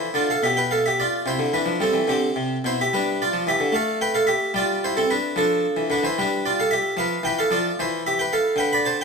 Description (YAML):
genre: classical, baroque-style suite movement for harpsichord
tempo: 74 BPM (dotted quarters)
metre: 6/8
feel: rubato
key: unclear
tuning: A4 = 440 Hz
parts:
  - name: harpsichord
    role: solo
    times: 0.0-9.0 s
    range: B2 to B5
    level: -20 LUFS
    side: equal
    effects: none
room: moderate recital hall reverb, RT60 1.7 s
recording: minimal, uncompressed stereo recording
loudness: -20 LUFS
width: side -5 dB against mid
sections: 0.0-9.0 A section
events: none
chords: 0.4 G7/B; 1.3 C; 2.9 G5; 3.7 G13/A; 4.6 Em/G; 5.4 Dm/F; 6.2 G5; 7.0 G13; 7.8 Fmaj9#11/E